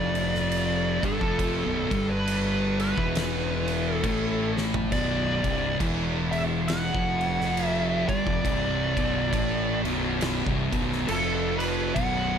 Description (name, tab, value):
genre	stoner and doom metal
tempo	68 BPM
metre	4/4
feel	swing 59% on 8ths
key	unclear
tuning	A4 = 440 Hz
part	fuzz lead guitar	melody	0.0-12.4 s	A4 to F#5	-29 LUFS	equal	wah, distortion, slapback echo
part	thick fuzz guitar	riff	0.0-12.4 s	B1 to A3	-30 LUFS	left 13 dB	distortion
part	thick fuzz guitar	riff	0.0-12.4 s	B1 to A3	-30 LUFS	right 11 dB	distortion
part	fuzz fingered electric bass	bass	0.0-12.4 s	B0 to A1	-32 LUFS	equal	overdrive
part	oversized low-tuned drum kit	drums	0.1-12.2 s	crash cymbal, kick drum, snare drum, splash cymbal, toms	-31 LUFS	equal	none
room	small room ambience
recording	none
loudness	-23 LUFS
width	side -8 dB against mid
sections	0.0-12.4 A section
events	drum fill 4.5-4.9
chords	0.0 Fmaj9#11/B